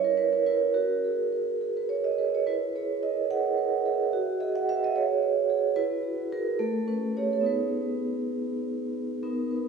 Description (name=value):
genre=classical, contemporary piece for solo vibraphone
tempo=67-74 BPM (dotted quarters)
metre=6/8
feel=rubato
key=B major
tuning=A4 = 443 Hz
part: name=vibraphone with soft mallets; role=solo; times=0.0-9.7 s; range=A3 to F#5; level=-25 LUFS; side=right 4 dB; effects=none
room=wet church reverb, RT60 3.0 s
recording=recorded in a church or concert hall, small room ambience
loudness=-25 LUFS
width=side -5 dB against mid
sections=0.0-9.2 A section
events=none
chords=0.0 C#m7; 0.8 F#add9; 2.5 E; 4.1 F#sus24; 5.8 Eadd9; 6.6 A7; 7.5 B6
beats=| 0.75 1.62 | 2.48 3.31 | 4.13 4.95 | 5.76 6.59 | 7.46 8.36 | 9.23